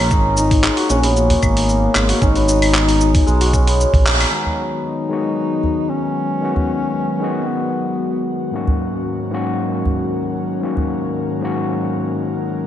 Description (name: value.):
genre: organic downtempo.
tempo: 114 BPM.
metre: 4/4.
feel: straight.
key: G# minor.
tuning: A4 = 440 Hz.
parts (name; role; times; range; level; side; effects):
santur; arpeggios; 0.0-7.8 s; G#3 to F#4; -20 LUFS; equal; ping-pong delay, slapback echo.
smooth synth bass; bass; 0.0-4.2 s; G#1 to B1; -17 LUFS; right 1 dB; none.
dusty soul sampler-style drum kit; drums; 0.1-4.3 s; claves, handclaps, hi-hat, shaker; -21 LUFS; right 1 dB; studio reverb, slapback echo.
electronic kick drum; drums; 0.1-4.0 s; none; -17 LUFS; right 1 dB; studio reverb.
dark duduk; melody; 0.4-8.3 s; A#3 to D#4; -21 LUFS; left 3 dB; ping-pong delay, slapback echo.
udu; percussion; 1.3-10.9 s; none; -20 LUFS; equal; none.
overdriven tine electric piano; accompaniment; 4.3-12.7 s; G#2 to F#4; -22 LUFS; left 3 dB; sidechain pumping, low-pass filter, ping-pong delay.
airy breathy pad; sustained chords; 4.3-12.7 s; G#2 to A#4; -24 LUFS; right 1 dB; chorus, sidechain pumping.
room: moderate scoring stage reverb, RT60 1.6 s, digital ambience.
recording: big arena sound, nothing above 10.3 kHz.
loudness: -15 LUFS.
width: side -11 dB against mid.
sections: 0.0-4.3 A section; 4.3-12.7 B section.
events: band accent 4.1.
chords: 0.1 Bmaj7/G#; 4.3 G#m7; 8.5 D#m7/G#.